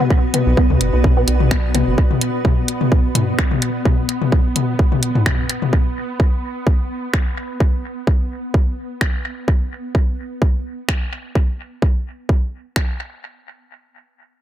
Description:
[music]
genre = minimal techno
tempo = 128 BPM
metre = 4/4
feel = swing 54% on 16ths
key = B minor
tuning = A4 = 443 Hz
[part]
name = resonant blip pluck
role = riff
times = 0.0-1.8 s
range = B3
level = -23 LUFS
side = right 3 dB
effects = chorus, phaser, sidechain pumping, analog delay
[part]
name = electronic toms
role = percussion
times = 0.0-5.7 s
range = none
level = -21 LUFS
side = left 5 dB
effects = analog delay
[part]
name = granular cloud pad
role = texture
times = 0.0-5.7 s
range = B3 to D5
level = -26 LUFS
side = left 1 dB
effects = built-in reverb, sidechain pumping
[part]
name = swarming drone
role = texture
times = 0.0-9.5 s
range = B3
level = -27 LUFS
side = right 3 dB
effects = built-in reverb, sidechain pumping
[part]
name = electronic kick drum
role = drums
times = 0.1-12.9 s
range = none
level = -16 LUFS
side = equal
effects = none
[part]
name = house drum kit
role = drums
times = 0.3-12.9 s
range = finger snaps, hi-hat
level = -24 LUFS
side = equal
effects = dub echo
[part]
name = rubbery square bass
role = bass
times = 0.5-2.0 s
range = F#1 to D2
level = -17 LUFS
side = equal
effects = sidechain pumping
[sound]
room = little or no reverb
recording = echo-heavy mix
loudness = -16 LUFS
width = side -11 dB against mid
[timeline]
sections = 0.0-13.2 A section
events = fade-out on ambient pad 0.0-5.7; filter sweep on synth pluck 0.0-2.0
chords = 0.0 Bm

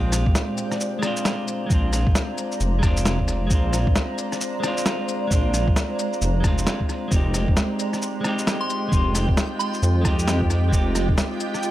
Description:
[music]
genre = future garage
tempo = 133 BPM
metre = 4/4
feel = swing 62% on 16ths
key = unclear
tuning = A4 = 440 Hz
[part]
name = clean electric guitar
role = accompaniment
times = 0.0-11.7 s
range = Ab3 to G4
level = -28 LUFS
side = equal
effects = vintage 12-bit sampler grit, sidechain pumping, tape echo
[part]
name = granular cloud pad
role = sustained chords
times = 0.0-11.7 s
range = Ab3 to Bb5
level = -30 LUFS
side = right 1 dB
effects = built-in reverb, sidechain pumping
[part]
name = dark detuned saw bass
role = bass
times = 0.0-11.2 s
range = F1 to F2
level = -22 LUFS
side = equal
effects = tube saturation, sidechain pumping
[part]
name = electronic rim click, cabasa, shaker and snare drum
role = drums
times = 0.1-11.7 s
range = none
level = -26 LUFS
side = equal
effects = overdrive, studio reverb
[part]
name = electronic kick drum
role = drums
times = 0.3-11.2 s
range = none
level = -21 LUFS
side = equal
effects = studio reverb
[part]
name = backwards swelling texture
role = texture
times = 8.2-11.7 s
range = G4 to G5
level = -39 LUFS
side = right 1 dB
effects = built-in reverb
[part]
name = soft synth bell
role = melody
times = 8.6-9.8 s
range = C6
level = -30 LUFS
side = left 1 dB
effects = chorus, phaser, tape echo
[sound]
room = light reverb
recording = none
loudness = -20 LUFS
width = side -14 dB against mid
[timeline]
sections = 0.0-11.7 A section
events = none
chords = 0.0 Bb9; 7.1 Fm9

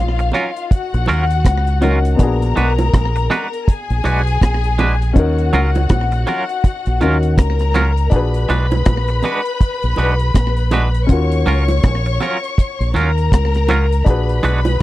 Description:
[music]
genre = lovers rock reggae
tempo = 81 BPM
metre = 4/4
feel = swing 60% on 16ths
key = Eb minor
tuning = A4 = 440 Hz
[part]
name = dark studio string section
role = second line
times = 0.0-14.8 s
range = F4 to Db6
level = -22 LUFS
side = left 4 dB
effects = none
[part]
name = warm baby grand piano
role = accompaniment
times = 0.0-14.8 s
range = Cb4 to Cb5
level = -24 LUFS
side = left 4 dB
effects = none
[part]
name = deep dub fingered electric bass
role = bass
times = 0.0-14.8 s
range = Bb1 to Eb2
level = -16 LUFS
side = equal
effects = none
[part]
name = twangy electric guitar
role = stabs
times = 0.2-14.6 s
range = Gb3 to Cb5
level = -19 LUFS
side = right 3 dB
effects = tremolo
[part]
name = deep reggae drum kit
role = drums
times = 0.2-14.8 s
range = hi-hat, kick drum, rim click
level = -14 LUFS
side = equal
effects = slapback echo
[part]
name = bongos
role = percussion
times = 0.3-14.8 s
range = none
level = -24 LUFS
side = right 4 dB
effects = none
[sound]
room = little or no reverb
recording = dry, close 1970s-style studio recording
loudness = -14 LUFS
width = side -16 dB against mid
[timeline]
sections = 0.0-14.8 A section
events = none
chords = 0.0 Ebm9; 2.2 Bb7b9b13; 5.2 Ebm9; 8.1 Bb7b9b13; 11.1 Ebm9; 14.1 Bb7b9b13

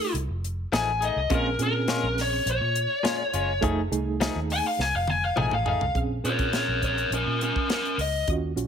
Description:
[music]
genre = straight-eighth soul blues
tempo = 103 BPM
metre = 4/4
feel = straight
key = Bb minor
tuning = A4 = 443 Hz
[part]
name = smooth overdriven lead guitar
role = melody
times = 0.0-8.3 s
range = Db4 to G#5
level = -26 LUFS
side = left 2 dB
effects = none
[part]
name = reed electric piano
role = accompaniment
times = 0.0-8.7 s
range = A3 to A4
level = -31 LUFS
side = right 6 dB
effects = fast tremolo
[part]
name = vintage muted fingered electric bass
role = bass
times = 0.1-8.7 s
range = F1 to Bb2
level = -30 LUFS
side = equal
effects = none
[part]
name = tight funk drum kit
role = drums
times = 0.1-8.7 s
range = hi-hat, kick drum, snare drum, toms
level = -30 LUFS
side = equal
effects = none
[part]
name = direct-recorded clean electric guitar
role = stabs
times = 0.7-5.9 s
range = Bb2 to G#4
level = -30 LUFS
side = left 6 dB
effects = none
[sound]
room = small room ambience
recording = none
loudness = -23 LUFS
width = side -7 dB against mid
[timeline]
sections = 0.0-6.0 A section; 6.0-8.7 B section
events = lead electric guitar solo 0.0-6.0; drum fill 4.8-6.0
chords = 0.0 F7#9; 1.3 Bbm7; 3.6 F7#9; 6.0 Bbm7

